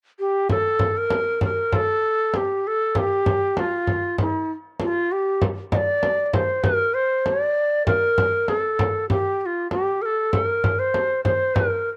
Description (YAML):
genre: Arabic maqam ensemble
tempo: 98 BPM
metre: 4/4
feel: straight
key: unclear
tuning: A4 = 440 Hz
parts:
  - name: breathy ney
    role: melody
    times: 0.2-11.9 s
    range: E4-48c to Eb5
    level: -23 LUFS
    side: equal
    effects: cassette tape
  - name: frame drum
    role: percussion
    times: 0.5-11.7 s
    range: none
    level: -26 LUFS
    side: equal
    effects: none
room: light reverb, small room reverb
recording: home recording on cassette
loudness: -22 LUFS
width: mono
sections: 0.5-12.0 A section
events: none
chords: none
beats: | 0.50 1.11 1.73 2.34 | 2.96 3.57 4.18 4.80 | 5.41 6.03 6.64 7.26 | 7.87 8.49 9.10 9.71 | 10.33 10.94 11.56